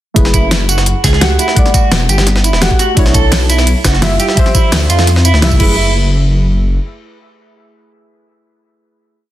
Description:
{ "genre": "liquid drum and bass", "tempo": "171 BPM", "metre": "4/4", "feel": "straight", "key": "unclear", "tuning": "A4 = 440 Hz", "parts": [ { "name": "deep mellow chord stab", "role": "accompaniment", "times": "0.1-9.3 s", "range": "F3 to F#5", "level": "-18 LUFS", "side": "equal", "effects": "chorus, dub echo" }, { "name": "dark detuned saw bass", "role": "bass", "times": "0.2-6.8 s", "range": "E1 to F2", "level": "-12 LUFS", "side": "equal", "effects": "none" }, { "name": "electronic kick drum", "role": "drums", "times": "0.2-5.7 s", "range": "none", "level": "-12 LUFS", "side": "equal", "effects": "small room ambience" }, { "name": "jungle sampler-style drum kit", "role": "drums", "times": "0.2-5.5 s", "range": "hi-hat, snare drum", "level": "-19 LUFS", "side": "left 1 dB", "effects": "high-pass filter on hats, small room ambience, high-pass filter on snare" }, { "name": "pop drum kit", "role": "drums", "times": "0.2-5.7 s", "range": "crash cymbal, hi-hat, ride cymbal, snare drum, tambourine", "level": "-17 LUFS", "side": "equal", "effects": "small room ambience" }, { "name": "electric guitar at the edge of break-up", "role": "arpeggios", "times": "0.3-5.9 s", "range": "E4 to A4", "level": "-18 LUFS", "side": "right 4 dB", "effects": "harmonic tremolo, tape echo" } ], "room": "light reverb", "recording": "dense, heavily limited modern master", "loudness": "-9 LUFS", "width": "side -13 dB against mid", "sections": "0.2-5.8 drop; 5.8-8.6 final hit", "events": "drop 0.2-5.8", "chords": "0.2 F#m11; 1.4 Em11; 3.0 Bm11; 4.2 Dm11; 5.6 F#m11" }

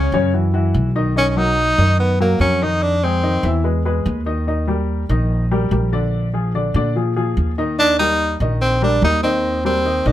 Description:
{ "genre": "Afro-Cuban jazz", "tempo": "145 BPM", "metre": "4/4", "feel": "straight", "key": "Eb major", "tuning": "A4 = 440 Hz", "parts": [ { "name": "clear tenor saxophone", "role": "melody", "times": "0.0-3.7, 7.8-10.1 s", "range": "A#3 to Eb4", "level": "-17 LUFS", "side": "equal", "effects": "none" }, { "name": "warm baby grand piano", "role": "accompaniment", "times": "0.0-10.1 s", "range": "Db3 to Fb5", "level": "-21 LUFS", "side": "left 2 dB", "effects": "none" }, { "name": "upright bass", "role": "bass", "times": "0.0-10.1 s", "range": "Bb1 to Bb2", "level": "-19 LUFS", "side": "equal", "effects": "none" } ], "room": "light reverb", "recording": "none", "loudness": "-15 LUFS", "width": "side -13 dB against mid", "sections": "0.0-10.1 A section", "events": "none", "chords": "0.3 Badd11; 1.2 Bmaj7; 2.8 Fm7; 3.6 E; 4.5 Ebmaj7; 6.1 Bb7; 7.8 Eb" }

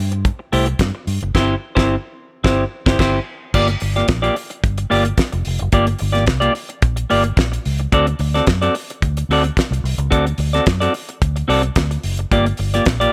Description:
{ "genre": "disco", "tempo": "109 BPM", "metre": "4/4", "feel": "straight", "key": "G dorian", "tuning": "A4 = 440 Hz", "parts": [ { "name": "vintage muted fingered electric bass", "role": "bass", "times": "0.0-13.1 s", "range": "F1 to G2", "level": "-22 LUFS", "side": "equal", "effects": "none" }, { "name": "clean electric guitar", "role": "accompaniment", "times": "0.1-13.1 s", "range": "A3 to D5", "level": "-21 LUFS", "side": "equal", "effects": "none" }, { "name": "damped 70s drum kit", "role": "drums", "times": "0.1-13.1 s", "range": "crash cymbal, hi-hat, kick drum, snare drum", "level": "-22 LUFS", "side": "equal", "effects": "none" } ], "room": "small room ambience", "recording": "none", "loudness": "-18 LUFS", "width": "mono", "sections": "0.0-3.5 A section; 3.5-13.1 B section", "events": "band accent 1.3-3.5", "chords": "0.0 Am7; 1.3 C/G; 3.5 Gm7; 7.9 D7; 12.3 Gm7" }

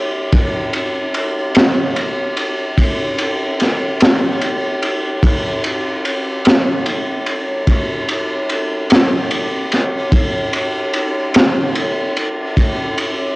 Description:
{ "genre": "blues", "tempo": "49 BPM (dotted quarters)", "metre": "12/8", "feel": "straight", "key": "none", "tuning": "none", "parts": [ { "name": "crunchy breakbeat drum kit", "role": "drums", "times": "0.3-13.2 s", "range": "kick drum, ride cymbal, snare drum", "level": "-14 LUFS", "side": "equal", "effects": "cassette tape" } ], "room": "light reverb", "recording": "home recording on cassette", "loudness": "-14 LUFS", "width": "side -24 dB against mid", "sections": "0.0-13.4 A section", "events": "none", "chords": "none" }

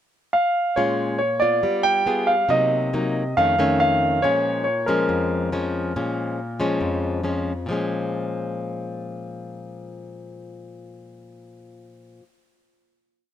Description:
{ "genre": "bossa nova", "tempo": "139 BPM", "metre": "4/4", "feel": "straight", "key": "Bb minor", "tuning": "A4 = 441 Hz", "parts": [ { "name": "warm concert grand piano", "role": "melody", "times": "0.3-7.2 s", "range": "Bb4 to G5", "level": "-21 LUFS", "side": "right 1 dB", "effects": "none" }, { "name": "nylon-string guitar", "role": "accompaniment", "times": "0.8-12.3 s", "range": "F2 to Ab4", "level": "-24 LUFS", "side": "left 2 dB", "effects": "none" } ], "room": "light reverb", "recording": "none", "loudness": "-20 LUFS", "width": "side -10 dB against mid", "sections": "0.0-0.8 pickup bar; 0.8-7.7 A section; 7.7-11.1 final chord", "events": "none", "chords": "0.0 N.C.; 0.8 Bbm7; 1.6 G7b9; 2.5 Cm7b5; 3.4 Faug7; 4.2 Bbm7" }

